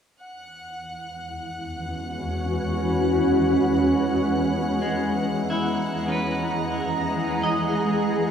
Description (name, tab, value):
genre	ambient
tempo	77 BPM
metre	3/4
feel	straight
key	E lydian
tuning	A4 = 439 Hz
part	shimmering ambient pad	sustained chords	1.4-8.3 s	E2 to A#5	-22 LUFS	equal	chorus, built-in reverb
part	clear studio violin section	texture	0.2-8.3 s	F#5 to F#6	-33 LUFS	right 1 dB	none
part	clean electric guitar	arpeggios	4.8-8.3 s	G#3 to D#5	-28 LUFS	equal	diffuse ambient delay
room	wet lush hall reverb, RT60 2.6 s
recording	dreamy mix soaked in reverb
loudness	-21 LUFS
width	side -8 dB against mid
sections	0.2-8.3 A section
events	none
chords	0.2 Eadd9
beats	| 0.21 0.99 1.77 | 2.55 3.33 4.11 | 4.89 5.67 6.45 | 7.23 8.01